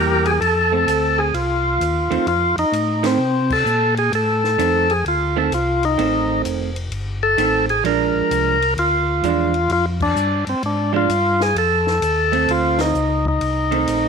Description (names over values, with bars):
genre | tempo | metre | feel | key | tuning
soul jazz organ trio | 129 BPM | 4/4 | swing 66% on 8ths | F mixolydian | A4 = 438 Hz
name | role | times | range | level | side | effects
percussive tonewheel organ | melody | 0.0-14.1 s | C4 to Bb4 | -18 LUFS | left 1 dB | slow rotary speaker, overdrive
vintage hollow-body jazz guitar | accompaniment | 0.0-14.1 s | Eb3 to E4 | -23 LUFS | right 13 dB | none
mellow tonewheel organ | bass | 0.0-14.1 s | F1 to C3 | -23 LUFS | left 1 dB | chorus vibrato, slow rotary speaker
compact cocktail drum kit | drums | 0.3-14.0 s | crash cymbal, hi-hat, kick drum, ride cymbal, snare drum | -32 LUFS | left 6 dB | none
room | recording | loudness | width
light reverb, studio ambience | 1960s-style stereo with parts hard left and right | -16 LUFS | side -6 dB against mid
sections
0.4-14.1 A section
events
band accent 3.4, 9.9, 12.7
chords
0.4 F7; 7.8 Bb7; 11.6 F7